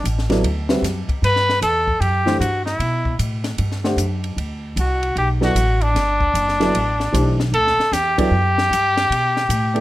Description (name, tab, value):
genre	modal jazz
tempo	152 BPM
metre	4/4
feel	swing 64% on 8ths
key	G major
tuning	A4 = 441 Hz
part	clear trumpet	melody	0.0-9.8 s	D4 to B4	-18 LUFS	equal	none
part	upright bass	bass	0.0-9.8 s	F#1 to B2	-21 LUFS	equal	none
part	compact cocktail drum kit	drums	0.1-9.8 s	hi-hat, kick drum, ride cymbal, snare drum	-27 LUFS	left 1 dB	none
part	dark baby grand piano	accompaniment	0.3-9.8 s	E3 to F#5	-21 LUFS	right 1 dB	none
room	light reverb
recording	none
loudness	-16 LUFS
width	side -16 dB against mid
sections	0.0-9.8 A section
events	none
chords	0.0 Gmaj9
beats	0.04 0.43 0.83 | 1.22 1.61 2.01 2.40 | 2.80 3.19 3.58 3.98 | 4.37 4.77 5.16 5.55 | 5.95 6.34 6.74 7.13 | 7.53 7.92 8.31 8.71 | 9.10 9.50